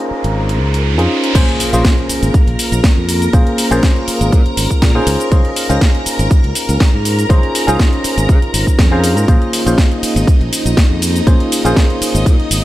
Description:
filtered disco house; 121 BPM; 4/4; swing 53% on 16ths; A4 = 440 Hz
tine electric piano; accompaniment; 0.0-12.6 s; Bb3 to C5; -18 LUFS; equal; phaser, vintage 12-bit sampler grit, sidechain pumping, low-pass filter
string machine, full ensemble; sustained chords; 0.0-12.6 s; Eb4 to Bb5; -22 LUFS; equal; ensemble chorus, sidechain pumping, low-pass filter
house drum kit; drums; 0.0-12.6 s; cabasa, crash cymbal, hi-hat, ride cymbal, snare drum; -19 LUFS; equal; sidechain pumping on hats, studio reverb, sidechain pumping on cymbals, sidechain pumping on perc
riser and impact; sound effects; 0.0-3.3 s; -23 LUFS; right 1 dB
modern bright fingered electric bass; bass; 0.1-12.6 s; Ab1 to Db3; -16 LUFS; equal; sidechain pumping, low-pass filter
electronic kick drum; drums; 1.3-12.4 s; -11 LUFS; equal; studio reverb
little or no reverb; -11 LUFS; side -15 dB against mid
0.0-1.4 A section; 1.4-12.6 B section
riser 0.0-1.4; drop 1.4-12.6; impact 1.4-3.3
0.0 Dbmaj9
0.36 0.85 | 1.35 1.85 2.34 2.84 | 3.33 3.83 4.33 4.82 | 5.32 5.81 6.31 6.81 | 7.30 7.80 8.29 8.79 | 9.29 9.78 10.28 10.77 | 11.27 11.76 12.26

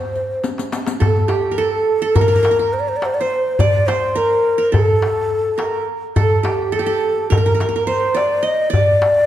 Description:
Turkish makam ensemble; 210 BPM (eighths); 9/8; straight; A4 = 438 Hz
breathy mellow ney; melody; 0.0-9.3 s; G4 to Eb5; -17 LUFS; left 1 dB
qanun; second line; 0.0-9.3 s; G4 to Eb5; -22 LUFS; right 4 dB
darbuka; percussion; 0.2-9.1 s; -19 LUFS; equal
riq; percussion; 0.2-1.0 s; -25 LUFS; left 4 dB
wet recital hall reverb, RT60 1.8 s; dark, warm production; -15 LUFS; side -12 dB against mid
0.0-1.0 A section; 1.0-9.3 B section
drum fill 0.4-1.0
0.15 0.44 0.72 | 1.01 1.30 1.58 1.87 2.16 2.44 2.73 3.02 3.30 | 3.59 3.88 4.16 4.45 4.73 5.02 5.30 5.59 5.88 | 6.16 6.45 6.73 7.02 7.30 7.59 7.87 8.16 8.44 | 8.73 9.01

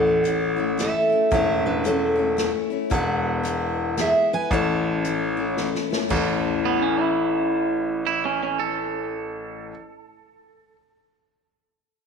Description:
honky-tonk and classic country; 113 BPM; 3/4; swing 61% on 8ths; A major; A4 = 440 Hz
picked steel-string acoustic guitar; melody; 0.0-9.7 s; C#4 to A5; -23 LUFS; right 1 dB
picked steel-string acoustic guitar; accompaniment; 0.0-9.8 s; E2 to E4; -26 LUFS; left 7 dB
bright grand piano; bass; 0.0-9.7 s; E1 to A1; -27 LUFS; right 1 dB
unplugged drum kit; drums; 0.2-6.3 s; china cymbal, hi-hat, kick drum, snare drum, toms; -30 LUFS; right 1 dB
twangy electric guitar; second line; 6.7-10.8 s; B3 to A4; -25 LUFS; right 7 dB; tape echo
wet echo chamber reverb, RT60 2.1 s; 1960s-style stereo with parts hard left and right; -20 LUFS; side -6 dB against mid
0.0-6.1 A section; 6.1-9.3 B section
drum fill 5.6-6.1
0.0 A; 2.9 E; 4.5 A
0.26 0.79 | 1.32 1.85 2.38 | 2.92 3.45 3.98 | 4.51 5.04 5.57 | 6.11 6.64 7.17 | 7.70 8.23 8.76

